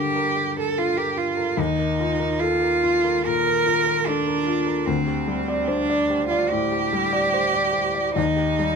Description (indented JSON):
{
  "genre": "neoclassical piano and strings",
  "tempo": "73 BPM",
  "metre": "4/4",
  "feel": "rubato",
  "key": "unclear",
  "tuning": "A4 = 440 Hz",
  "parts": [
    { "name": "rich cello", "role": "second line", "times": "0.0-8.8 s", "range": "C4 to Bb4", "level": "-22 LUFS", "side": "right 3 dB", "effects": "none" },
    { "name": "felt-muted upright piano", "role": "accompaniment", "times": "0.0-8.8 s", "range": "D2 to D5", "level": "-24 LUFS", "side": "left 3 dB", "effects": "none" }
  ],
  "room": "moderate studio reverb, RT60 0.6 s",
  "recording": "band playing live in one room",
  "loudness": "-20 LUFS",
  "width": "side -5 dB against mid",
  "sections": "0.0-8.8 A section",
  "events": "none",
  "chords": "0.0 Gm; 1.6 Ebsus2; 4.9 Dsus4; 8.2 Cm/Eb (rootless)"
}